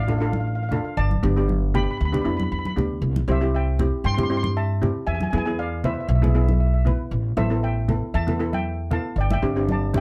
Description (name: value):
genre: calypso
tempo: 117 BPM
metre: 4/4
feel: straight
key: C major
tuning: A4 = 444 Hz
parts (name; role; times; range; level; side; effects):
- steel pan; melody; 0.0-10.0 s; C5 to C6; -32 LUFS; equal; none
- upright bass; bass; 0.0-10.0 s; G1 to G2; -25 LUFS; equal; none
- steel pan; accompaniment; 0.1-10.0 s; B3 to B4; -29 LUFS; equal; none
- congas; percussion; 0.1-10.0 s; none; -30 LUFS; equal; none
room: light reverb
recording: dark, warm production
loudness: -23 LUFS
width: mono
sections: 0.0-10.0 A section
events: none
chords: 0.0 Dm; 1.0 Gadd9; 3.0 C; 5.1 E; 7.1 Asus2; 9.2 Gsus4